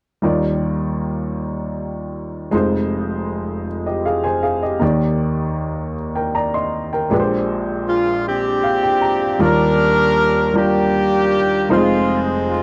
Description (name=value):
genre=gospel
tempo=52 BPM (dotted quarters)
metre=6/8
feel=straight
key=Eb major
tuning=A4 = 439 Hz
part: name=clear upright piano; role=accompaniment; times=0.2-12.6 s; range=F1 to C6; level=-21 LUFS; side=equal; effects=none
part: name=clear horn section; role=melody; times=7.9-12.6 s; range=Ab3 to Bb4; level=-19 LUFS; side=equal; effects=none
room=light reverb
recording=dry, close 1970s-style studio recording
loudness=-19 LUFS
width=mono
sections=0.2-9.4 A section; 9.4-12.6 B section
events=upright piano fill 8.3-9.4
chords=0.2 Ebmaj9; 2.5 Fm7; 4.8 Ebmaj7; 7.1 Bb13; 9.4 Ebmaj9; 11.7 Fm7